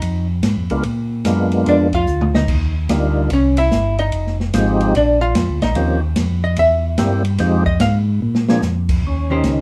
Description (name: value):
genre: soul jazz organ trio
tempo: 146 BPM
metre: 4/4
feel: swing 66% on 8ths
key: unclear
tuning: A4 = 440 Hz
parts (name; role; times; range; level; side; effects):
- archtop guitar, miked and amplified; accompaniment; 0.0-9.6 s; Eb3 to F5; -20 LUFS; equal; none
- mellow tonewheel organ; bass; 0.0-9.6 s; F1 to Bb2; -21 LUFS; equal; overdrive, chorus vibrato, slow rotary speaker
- open jazz drum kit; drums; 0.0-9.6 s; crash cymbal, hi-hat, kick drum, ride cymbal, snare drum, toms; -24 LUFS; equal; none
- percussive tonewheel organ; melody; 0.7-9.6 s; F3 to Ab4; -22 LUFS; equal; slow rotary speaker, overdrive, chorus vibrato
room: wet club reverb, RT60 0.7 s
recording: none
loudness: -17 LUFS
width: mono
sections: 0.0-9.0 A section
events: hollow-body jazz guitar solo 0.0-9.0; drum fill 2.1-2.5, 8.2-8.6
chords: 0.0 Db; 0.8 Bb7b9; 2.5 Ebmaj9; 3.3 C; 4.1 Fm7; 4.9 Bb; 5.8 Eb13; 6.6 C7; 7.4 Fm7; 8.2 Bb7; 9.0 Eb6